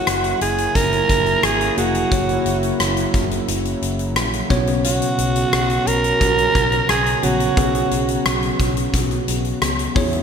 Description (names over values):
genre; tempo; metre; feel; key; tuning
1980s-style pop; 88 BPM; 4/4; straight; unclear; A4 = 440 Hz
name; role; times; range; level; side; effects
raspy alto saxophone; melody; 0.0-8.3 s; F#4 to A#4; -20 LUFS; right 3 dB; shimmer reverb, ping-pong delay
bell-like tine electric piano; accompaniment; 0.0-10.2 s; B2 to C#5; -24 LUFS; left 2 dB; medium stereo tremolo, shimmer reverb
warm analog pad; sustained chords; 0.0-10.2 s; C#3 to F#4; -26 LUFS; right 2 dB; chorus, shimmer reverb
vintage muted fingered electric bass; bass; 0.1-10.2 s; E#1 to E2; -25 LUFS; equal; none
huge arena drum kit; drums; 0.1-10.2 s; hi-hat, kick drum, rim click; -22 LUFS; left 1 dB; gated reverb
room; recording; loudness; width
moderate lush hall reverb, RT60 3.0 s; bright 1980s-style digital production; -16 LUFS; side -7 dB against mid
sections
0.0-10.2 A section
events
none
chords
0.0 F#7; 4.5 Bsus2